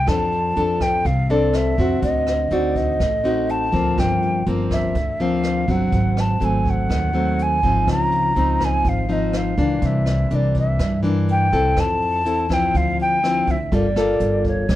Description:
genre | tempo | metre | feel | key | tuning
bossa nova | 123 BPM | 4/4 | straight | F major | A4 = 441 Hz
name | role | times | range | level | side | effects
mellow hollow jazz flute | melody | 0.0-14.8 s | Db5 to Bb5 | -22 LUFS | equal | none
nylon-string guitar | accompaniment | 0.0-14.8 s | G2 to A4 | -22 LUFS | left 2 dB | none
upright bass | bass | 0.0-14.8 s | G1 to G2 | -23 LUFS | equal | none
jazz brush drum kit | drums | 0.1-14.8 s | hi-hat, kick drum, rim click | -27 LUFS | right 1 dB | none
room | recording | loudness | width
light reverb | dark, warm production | -17 LUFS | side -14 dB against mid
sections
0.1-14.8 A section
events
none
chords
0.1 F6; 2.0 D7b9; 4.0 Gm7; 5.9 Ab7b9; 7.9 Dbmaj9; 9.8 C9; 11.8 Fmaj7; 12.7 Dm9; 13.7 Gm9

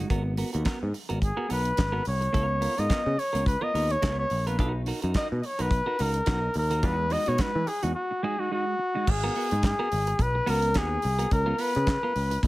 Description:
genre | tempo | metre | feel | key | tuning
disco | 107 BPM | 4/4 | swing 56% on 16ths | unclear | A4 = 436 Hz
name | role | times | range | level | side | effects
clean electric guitar | accompaniment | 0.0-12.5 s | G#3 to A#4 | -33 LUFS | right 3 dB | none
overdriven picked electric bass | bass | 0.0-12.5 s | G#1 to E3 | -28 LUFS | equal | none
damped 70s drum kit | drums | 0.1-12.5 s | crash cymbal, handclaps, hi-hat, kick drum, snare drum | -29 LUFS | equal | none
clear flugelhorn | melody | 1.2-12.4 s | F#4 to D#5 | -28 LUFS | left 1 dB | none
room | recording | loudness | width
little or no reverb | none | -24 LUFS | side -18 dB against mid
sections
0.0-9.1 A section; 9.1-12.5 B section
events
flugelhorn solo 0.0-9.1; break 8.0-9.1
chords
0.1 G#m9; 2.3 C#13; 4.6 Bmaj7; 6.8 Emaj9; 9.1 G#m9; 11.3 C#13

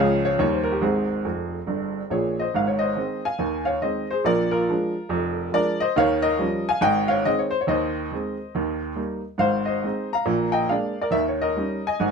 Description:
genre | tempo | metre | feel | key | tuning
jazz, stride piano | 140 BPM | 4/4 | swing 59% on 8ths | Ab major | A4 = 440 Hz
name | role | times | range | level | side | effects
clear upright piano | solo | 0.0-12.1 s | F1 to Bb5 | -21 LUFS | equal | none
room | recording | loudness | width
moderate studio reverb, RT60 0.6 s | minimal, uncompressed stereo recording | -21 LUFS | side -5 dB against mid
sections
0.0-2.5 A section; 2.5-12.1 A section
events
upright piano fill 1.2-2.5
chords
0.4 Eb; 0.8 Ab; 4.3 Bb7; 6.0 Eb9; 6.8 Ab; 7.7 Ab/Eb; 8.5 Eb; 9.4 Ab; 10.3 Bb7; 11.1 Eb7

